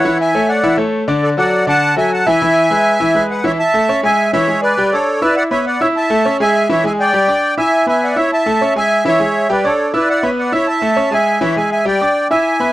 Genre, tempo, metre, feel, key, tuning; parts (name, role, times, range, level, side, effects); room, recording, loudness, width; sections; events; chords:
latin; 203 BPM; 4/4; straight; A4 = 440 Hz
accordion; melody; 0.0-12.7 s; A4 to A5; -14 LUFS; equal; light tremolo tuning
bright concert grand piano; accompaniment; 0.0-12.7 s; D3 to E6; -16 LUFS; equal
light reverb; dry, close 1970s-style studio recording; -12 LUFS; side -15 dB against mid
0.0-3.6 A section; 3.6-12.7 B section
0.0 F#m7; 1.2 D; 2.4 E; 3.6 A; 4.2 E; 4.8 G; 5.4 E5; 6.0 A; 6.5 E7; 7.1 G5; 7.7 E7; 8.3 A; 8.9 E; 9.5 G; 10.1 E5; 10.7 A; 11.3 E; 11.9 G5